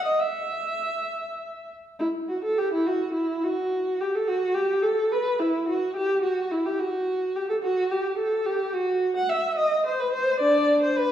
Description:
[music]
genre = classical, baroque-style suite movement for unaccompanied viola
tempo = 71 BPM (dotted quarters)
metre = 6/8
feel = rubato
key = unclear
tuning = A4 = 439 Hz
[part]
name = rich viola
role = solo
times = 0.0-11.1 s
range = D4 to F#5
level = -23 LUFS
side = equal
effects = none
[sound]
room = wet recital hall reverb, RT60 1.5 s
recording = heard from further back in the room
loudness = -23 LUFS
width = side -10 dB against mid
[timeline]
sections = 0.0-2.0 A section; 2.0-11.1 B section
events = none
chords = none

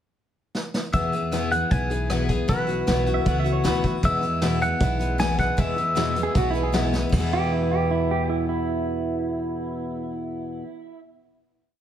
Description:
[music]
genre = honky-tonk and classic country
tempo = 155 BPM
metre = 4/4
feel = straight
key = E major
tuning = A4 = 440 Hz
[part]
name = vintage brush drum kit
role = drums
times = 0.5-7.2 s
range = crash cymbal, hi-hat, kick drum, rim click, snare drum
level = -27 LUFS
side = equal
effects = none
[part]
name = clean electric guitar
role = melody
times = 0.9-6.7 s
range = B4 to G#5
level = -26 LUFS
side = equal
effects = none
[part]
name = picked steel-string acoustic guitar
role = accompaniment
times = 0.9-10.7 s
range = E2 to G#4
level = -26 LUFS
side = left 3 dB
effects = none
[part]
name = upright bass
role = bass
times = 0.9-10.1 s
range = B1 to E2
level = -27 LUFS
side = right 1 dB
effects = none
[part]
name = pedal steel guitar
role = second line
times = 3.1-11.0 s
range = E4 to F#5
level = -28 LUFS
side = right 6 dB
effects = none
[sound]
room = moderate plate reverb, RT60 1.5 s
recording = heard from further back in the room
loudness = -21 LUFS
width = side -10 dB against mid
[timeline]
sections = 0.0-0.9 pickup bar; 0.9-7.1 A section; 7.1-10.2 final chord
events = drum fill 0.6-0.9, 6.9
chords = 0.0 N.C.; 0.9 E; 2.5 Bsus4; 4.0 E

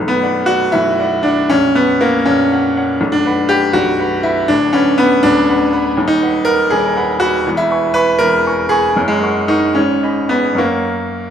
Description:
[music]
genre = classical, romantic character piece for solo piano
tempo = 80 BPM (dotted quarters)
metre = 6/8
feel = rubato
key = B minor, B major from 6.0 s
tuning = A4 = 441 Hz
[part]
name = clear baby grand piano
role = solo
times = 0.0-11.3 s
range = A#0 to C#6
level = -12 LUFS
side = equal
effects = none
[sound]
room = moderate scoring stage reverb, RT60 1.4 s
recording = none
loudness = -12 LUFS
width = side -8 dB against mid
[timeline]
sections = 0.0-11.3 A section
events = none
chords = 0.0 Bm; 1.5 F#/A#; 3.0 B5; 4.5 Bm/D; 6.0 B/D#; 7.5 C#m7/E; 9.0 F#; 9.8 G#m; 10.6 F#

